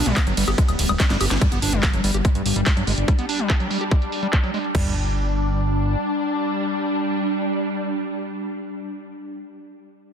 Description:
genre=psychedelic trance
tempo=144 BPM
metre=4/4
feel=straight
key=G major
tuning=A4 = 440 Hz
part: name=swarming drone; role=sustained chords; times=0.0-8.7 s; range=G3 to D4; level=-25 LUFS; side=left 1 dB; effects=built-in reverb, phaser, sidechain pumping
part: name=overdriven acid bass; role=riff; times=0.0-4.9 s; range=F#3 to G4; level=-28 LUFS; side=moving between left 3 dB and right 3 dB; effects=auto-pan, sidechain pumping, dub echo
part: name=fat analog bass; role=bass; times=0.0-6.0 s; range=D1 to G2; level=-22 LUFS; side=equal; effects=none
part: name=drum and bass drum kit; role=drums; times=0.1-4.7 s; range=handclaps, hi-hat, ride cymbal, snare drum, woodblock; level=-25 LUFS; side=equal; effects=overdrive, low-pass filter on hats, low-pass filter on perc, low-pass filter on cymbals, low-pass filter on snare, low-pass filter on room
part: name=drum and bass drum kit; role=drums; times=0.2-4.8 s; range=crash cymbal, kick drum, toms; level=-20 LUFS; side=equal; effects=overdrive
part: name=impact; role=sound effects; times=1.5-3.1 s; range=none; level=-31 LUFS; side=equal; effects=none
room=light reverb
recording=dense, heavily limited modern master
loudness=-19 LUFS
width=side -8 dB against mid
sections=0.0-1.4 A section; 1.4-4.7 B section; 4.7-8.1 C section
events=drop 0.0-1.4; drum fill 1.0-1.4; band accent 1.3; impact 1.4-3.1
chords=0.0 G5

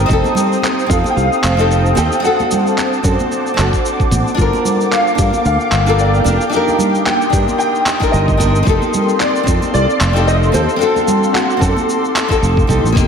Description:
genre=sunset chillout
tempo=112 BPM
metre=4/4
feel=swing 56% on 16ths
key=unclear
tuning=A4 = 441 Hz
part: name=ethereal airy pad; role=sustained chords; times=0.0-13.1 s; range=Bb3 to Eb6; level=-20 LUFS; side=equal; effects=ensemble chorus, built-in reverb, tremolo
part: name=sustaining fretless electric bass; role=bass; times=0.0-13.1 s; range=F1 to G2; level=-15 LUFS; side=equal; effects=analog chorus
part: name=nylon-string guitar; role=accompaniment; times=0.1-13.1 s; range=Bb3 to Bb4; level=-18 LUFS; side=left 2 dB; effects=auto-pan, ping-pong delay
part: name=dusty soul sampler-style drum kit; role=drums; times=0.1-13.1 s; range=cabasa, handclaps, hi-hat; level=-23 LUFS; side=equal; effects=overdrive
part: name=electronic kick drum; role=drums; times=0.1-13.1 s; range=none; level=-17 LUFS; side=equal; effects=overdrive
part: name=congas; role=percussion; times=0.2-12.8 s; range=none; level=-23 LUFS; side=right 2 dB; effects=none
part: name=clear concert grand piano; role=melody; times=0.9-12.4 s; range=F#4 to G5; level=-19 LUFS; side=left 1 dB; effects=ensemble chorus, ping-pong delay
room=wet lush hall reverb, RT60 2.0 s, small room ambience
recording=dreamy mix soaked in reverb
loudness=-12 LUFS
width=side -6 dB against mid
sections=0.0-13.0 A section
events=none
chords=0.1 F7; 2.2 D7; 4.4 Gm7; 6.5 Cm7; 8.7 F7; 10.8 D7; 11.9 F7

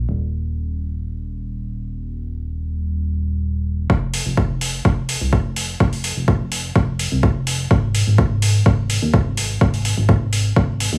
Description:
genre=progressive house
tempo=126 BPM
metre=4/4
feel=straight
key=F minor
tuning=A4 = 441 Hz
part: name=fat analog bass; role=bass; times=0.0-11.0 s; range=Eb1 to Eb2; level=-24 LUFS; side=equal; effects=sidechain pumping
part: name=electronic kick drum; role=drums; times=3.9-10.7 s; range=none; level=-20 LUFS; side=equal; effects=none
part: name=electronic hi-hat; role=drums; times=4.1-10.9 s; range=none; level=-27 LUFS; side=equal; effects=overdrive, low-pass filter on hats, low-pass filter on room
room=little or no reverb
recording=studio ambience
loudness=-20 LUFS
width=mono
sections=0.0-3.9 A section; 3.9-11.0 B section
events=build-up 3.9-11.0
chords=none

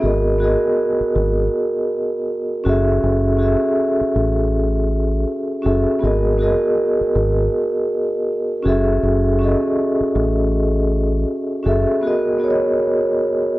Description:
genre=lo-fi hip hop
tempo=80 BPM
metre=4/4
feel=swing 60% on 16ths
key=G# phrygian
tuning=A4 = 438 Hz
part: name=vibraphone with soft mallets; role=accompaniment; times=0.0-13.6 s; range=B3 to E5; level=-17 LUFS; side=equal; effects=cassette tape, plate reverb
part: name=deep dub fingered electric bass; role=bass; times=0.0-11.8 s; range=F#1 to A1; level=-19 LUFS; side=equal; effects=tube saturation
room=moderate studio reverb, RT60 0.5 s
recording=worn, warbling old tape, cassette tape, warbly pitch drift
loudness=-16 LUFS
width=side -18 dB against mid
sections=0.0-13.6 A section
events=none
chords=0.0 G#m9; 2.6 F#m9; 6.0 G#m9; 8.6 F#m9; 12.0 G#m9

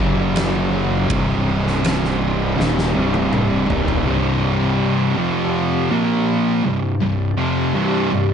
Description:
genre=stoner and doom metal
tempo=81 BPM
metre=4/4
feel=straight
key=C minor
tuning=A4 = 440 Hz
part: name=organ-like drone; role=sustained chords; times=0.0-8.3 s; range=F3 to D5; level=-29 LUFS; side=left 2 dB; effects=ensemble chorus, built-in reverb
part: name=thick fuzz guitar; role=riff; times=0.0-8.3 s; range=C2 to Bb3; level=-23 LUFS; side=left 7 dB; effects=distortion
part: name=thick fuzz guitar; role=riff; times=0.0-8.3 s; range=C2 to Bb3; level=-21 LUFS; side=right 7 dB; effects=distortion
part: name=thick fuzz guitar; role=riff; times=0.0-8.3 s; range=C2 to Bb3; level=-23 LUFS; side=left 1 dB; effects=distortion
part: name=fuzz fingered electric bass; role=bass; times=0.0-4.0 s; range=C1 to F#1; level=-24 LUFS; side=left 1 dB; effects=overdrive
part: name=oversized low-tuned drum kit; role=drums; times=0.4-4.0 s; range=kick drum, ride cymbal, snare drum, toms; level=-24 LUFS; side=left 1 dB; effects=none
room=moderate large studio reverb, RT60 0.9 s, small room ambience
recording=nothing above 11.0 kHz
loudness=-16 LUFS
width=side -7 dB against mid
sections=0.0-4.1 A section; 4.1-8.3 B section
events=drum fill 2.6-4.1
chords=0.0 F#5; 1.1 Cm; 4.1 C5; 5.2 F5; 5.9 Bb5; 6.6 C5

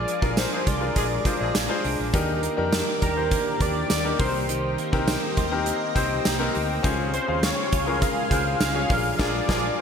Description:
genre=1980s-style pop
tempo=102 BPM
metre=4/4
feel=straight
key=Eb major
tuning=A4 = 440 Hz
part: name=octave-doubled lead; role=melody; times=0.0-9.8 s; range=Bb4 to F5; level=-28 LUFS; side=equal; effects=chorus, ping-pong delay
part: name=bright concert grand piano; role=accompaniment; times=0.0-9.8 s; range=Db3 to F5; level=-27 LUFS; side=left 4 dB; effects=none
part: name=lush unison pad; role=sustained chords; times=0.0-9.8 s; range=G4 to D6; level=-33 LUFS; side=equal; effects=chorus
part: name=twelve-string electric guitar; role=riff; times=0.0-9.7 s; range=Eb3 to G4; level=-33 LUFS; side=right 5 dB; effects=ensemble chorus, ping-pong delay
part: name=fretless electric bass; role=bass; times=0.0-9.7 s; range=Bb1 to F2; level=-30 LUFS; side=equal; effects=none
part: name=gated 80s drum kit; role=drums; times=0.1-9.7 s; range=crash cymbal, hi-hat, kick drum, snare drum, tambourine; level=-26 LUFS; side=right 1 dB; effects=gated reverb
part: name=mellow horn section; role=stabs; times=0.5-1.8, 9.2-9.6 s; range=F3 to Ab4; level=-35 LUFS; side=equal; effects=ping-pong delay
room=moderate lush hall reverb, RT60 2.7 s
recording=bright 1980s-style digital production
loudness=-21 LUFS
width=side -7 dB against mid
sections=0.0-9.8 A section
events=band accent 0.0-2.1, 9.2-9.8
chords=0.0 Bb7; 2.1 Ebmaj7; 4.2 Cm7; 6.8 Dbmaj7; 8.9 Bb7

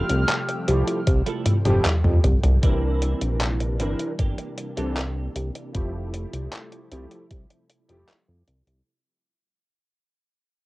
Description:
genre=vaporwave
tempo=77 BPM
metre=4/4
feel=straight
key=F major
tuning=A4 = 440 Hz
part: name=warm velvety synth lead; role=melody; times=0.0-0.7 s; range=F6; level=-30 LUFS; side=equal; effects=chorus, cassette tape, tape echo
part: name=warm electric grand piano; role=accompaniment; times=0.0-8.1 s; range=E3 to G5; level=-30 LUFS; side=equal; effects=ensemble chorus, cassette tape, tape echo
part: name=soft string machine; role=sustained chords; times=0.0-8.8 s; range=C3 to G5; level=-34 LUFS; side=equal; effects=ensemble chorus, cassette tape
part: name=clean electric guitar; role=riff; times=0.0-5.3 s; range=A3 to A4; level=-34 LUFS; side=right 6 dB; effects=ensemble chorus, cassette tape, tape echo
part: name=chorused synth bass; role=bass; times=0.0-8.8 s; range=F1 to F2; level=-24 LUFS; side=equal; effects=none
part: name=detuned 8-bit digital drum machine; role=drums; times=0.1-8.8 s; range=handclaps, hi-hat, toms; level=-23 LUFS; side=equal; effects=small room ambience, cassette tape
part: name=electronic kick drum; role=drums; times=1.1-7.5 s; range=none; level=-23 LUFS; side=equal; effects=small room ambience, cassette tape
room=moderate booth ambience, RT60 0.2 s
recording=home recording on cassette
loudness=-21 LUFS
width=side -20 dB against mid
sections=0.0-2.6 A section; 2.6-8.9 B section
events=drum fill 1.5-2.6; fade-out 2.6-8.9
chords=0.0 Fmaj9; 2.6 C9; 5.7 Fmaj9

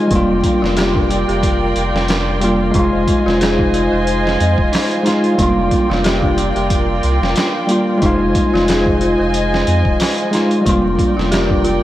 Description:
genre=trip hop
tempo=91 BPM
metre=4/4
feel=swing 55% on 16ths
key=unclear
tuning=A4 = 440 Hz
part: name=bell-like tine electric piano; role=accompaniment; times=0.0-11.8 s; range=G3 to F4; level=-17 LUFS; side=equal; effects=harmonic tremolo, vintage 12-bit sampler grit, low-pass filter, tape echo
part: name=dark studio violin section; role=sustained chords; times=0.0-11.8 s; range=F4 to Ab5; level=-20 LUFS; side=right 1 dB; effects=none
part: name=dark detuned synth bell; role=arpeggios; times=0.0-11.8 s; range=D4 to Ab4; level=-22 LUFS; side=left 2 dB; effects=chorus, analog delay
part: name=warm sub bass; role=bass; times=0.1-11.8 s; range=Eb1 to F2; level=-20 LUFS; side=equal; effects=none
part: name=trip hop sampler-style drum kit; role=drums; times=0.1-11.8 s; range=hi-hat, kick drum, snare drum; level=-19 LUFS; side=equal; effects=none
room=wet plate reverb, RT60 2.1 s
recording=dreamy mix soaked in reverb, vinyl crackle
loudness=-13 LUFS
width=side -14 dB against mid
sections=0.0-11.8 A section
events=none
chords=0.1 Gm7/F; 2.7 Fm7; 5.4 Gm7/F; 8.0 Fm7; 10.7 Gm7/F

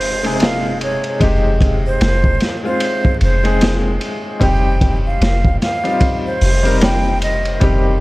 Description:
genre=trip hop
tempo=75 BPM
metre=4/4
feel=swing 58% on 16ths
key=F minor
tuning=A4 = 441 Hz
part: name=breathy jazz flute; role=melody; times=0.0-7.6 s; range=C5 to G5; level=-21 LUFS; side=right 1 dB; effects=tape echo
part: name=bright upright piano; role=accompaniment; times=0.0-8.0 s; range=C3 to Bb4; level=-20 LUFS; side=left 2 dB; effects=tremolo
part: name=soft 808-style bass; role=bass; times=0.0-8.0 s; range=F1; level=-17 LUFS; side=equal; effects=tube saturation
part: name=crunchy breakbeat drum kit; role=drums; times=0.0-7.8 s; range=hi-hat, kick drum, ride cymbal, snare drum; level=-18 LUFS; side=equal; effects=none
room=little or no reverb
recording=dark, warm production, vinyl crackle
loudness=-13 LUFS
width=side -20 dB against mid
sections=0.0-8.0 A section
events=none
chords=0.0 Fm9; 4.4 Cm/F

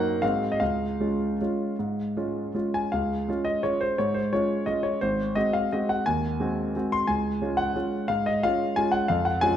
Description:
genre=classical, piano waltz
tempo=149-193 BPM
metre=3/4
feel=rubato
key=Db major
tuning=A4 = 442 Hz
part: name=clear concert grand piano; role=solo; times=0.0-9.6 s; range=Ab1 to C6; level=-23 LUFS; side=equal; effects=none
room=wet recital hall reverb, RT60 1.3 s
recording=dark, warm production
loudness=-24 LUFS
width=side -10 dB against mid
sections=0.0-2.9 A section; 2.9-9.6 A section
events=none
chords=0.2 Ab7; 0.6 Db; 5.0 Ab7; 7.1 Db

